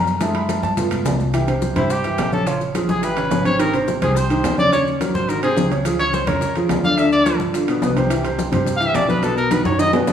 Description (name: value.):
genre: Afro-Cuban jazz.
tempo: 213 BPM.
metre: 4/4.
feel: straight.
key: unclear.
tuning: A4 = 440 Hz.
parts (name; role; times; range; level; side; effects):
warm baby grand piano; accompaniment; 0.0-10.1 s; B2 to B5; -20 LUFS; right 1 dB; none.
upright bass; bass; 0.0-10.1 s; G1 to G2; -26 LUFS; equal; none.
bongos; percussion; 0.1-10.1 s; none; -30 LUFS; left 6 dB; none.
congas; percussion; 0.1-10.1 s; none; -26 LUFS; left 2 dB; none.
maracas; percussion; 0.1-10.1 s; none; -38 LUFS; left 5 dB; none.
timbales; percussion; 0.2-10.1 s; none; -28 LUFS; right 3 dB; none.
bright trumpet; melody; 1.8-10.1 s; E4 to F5; -21 LUFS; left 1 dB; none.
room: wet recital hall reverb, RT60 1.6 s.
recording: recorded in a church or concert hall, studio reverb.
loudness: -16 LUFS.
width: side -8 dB against mid.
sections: 0.0-1.3 A section; 1.3-10.1 A section.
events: grand piano solo 0.0-1.3; drum fill 0.2-1.3, 9.7-10.1; trumpet solo 1.3-10.1.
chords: 0.2 F#m7; 0.8 G7; 1.3 C; 2.5 Bbm7; 3.0 A9; 3.6 Abmaj7; 4.7 Ebm7; 5.3 Ab7; 5.9 Db6; 7.0 Dm; 7.5 G7; 8.1 C; 9.2 B.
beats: | 0.21 0.49 0.77 1.05 | 1.34 1.62 1.90 2.18 | 2.47 2.75 3.03 3.31 | 3.60 3.88 4.16 4.44 | 4.72 5.01 5.29 5.57 | 5.85 6.13 6.42 6.70 | 6.98 7.26 7.54 7.82 | 8.10 8.38 8.67 8.95 | 9.23 9.51 9.79 10.07.